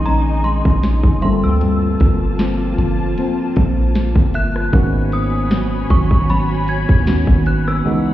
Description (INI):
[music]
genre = contemporary R&B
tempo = 77 BPM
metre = 4/4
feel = swing 54% on 16ths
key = unclear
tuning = A4 = 440 Hz
[part]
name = synth chime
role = melody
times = 0.0-8.1 s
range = Bb5 to Ab6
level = -24 LUFS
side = equal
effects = ensemble chorus, tape echo
[part]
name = barky tine electric piano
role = accompaniment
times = 0.0-8.1 s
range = Db2 to A4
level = -22 LUFS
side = right 4 dB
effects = overdrive
[part]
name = clear studio string section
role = sustained chords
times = 0.0-8.1 s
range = Db3 to Cb6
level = -28 LUFS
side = left 3 dB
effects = sidechain pumping
[part]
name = nylon-string guitar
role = arpeggios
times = 0.0-8.1 s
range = G2 to Db4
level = -21 LUFS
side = left 3 dB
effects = tape echo
[part]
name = long sustained 808-style bass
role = bass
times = 0.0-7.8 s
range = G1 to Eb2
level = -18 LUFS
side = equal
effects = none
[part]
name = mallet-like synth pluck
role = texture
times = 0.0-7.6 s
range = C4 to Ab5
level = -37 LUFS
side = equal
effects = chorus, tape echo
[part]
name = trap drum kit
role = drums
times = 0.1-7.8 s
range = hi-hat, kick drum, rim click, snare drum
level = -15 LUFS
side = equal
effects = none
[sound]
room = little or no reverb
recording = heard muffled through a wall, stone room reverb, EQ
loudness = -14 LUFS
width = side -13 dB against mid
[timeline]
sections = 0.0-8.1 A section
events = none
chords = 0.0 Bbm11; 1.2 Gm11; 4.7 Abm11